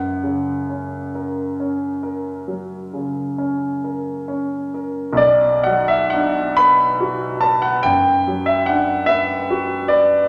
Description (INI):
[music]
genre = classical, romantic nocturne for solo piano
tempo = 41-50 BPM (dotted quarters)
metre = 12/8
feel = rubato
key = B minor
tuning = A4 = 445 Hz
[part]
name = warm grand piano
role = solo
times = 0.0-10.3 s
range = B1 to B5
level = -19 LUFS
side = equal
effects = none
[sound]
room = wet recital hall reverb, RT60 1.5 s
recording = none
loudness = -19 LUFS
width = mono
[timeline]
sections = 0.0-5.2 A section; 5.2-10.3 A section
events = none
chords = 0.0 F#; 5.2 Bm